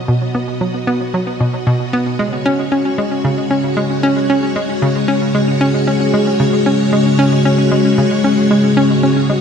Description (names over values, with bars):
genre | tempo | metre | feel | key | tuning
ambient, sequencer-driven space music | 114 BPM | 4/4 | straight | unclear | A4 = 440 Hz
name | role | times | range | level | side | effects
string machine, full ensemble | sustained chords | 0.0-9.4 s | B2 to D#5 | -15 LUFS | left 1 dB | ensemble chorus
hollow square pluck | riff | 0.1-9.4 s | B2 to C#4 | -16 LUFS | equal | chorus, tape echo, shimmer reverb
room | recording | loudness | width
wet lush hall reverb, RT60 2.9 s | none | -12 LUFS | side -7 dB against mid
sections
0.0-9.4 A section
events
fade-in on string machine 0.0-9.4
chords
0.0 B; 2.2 C#sus4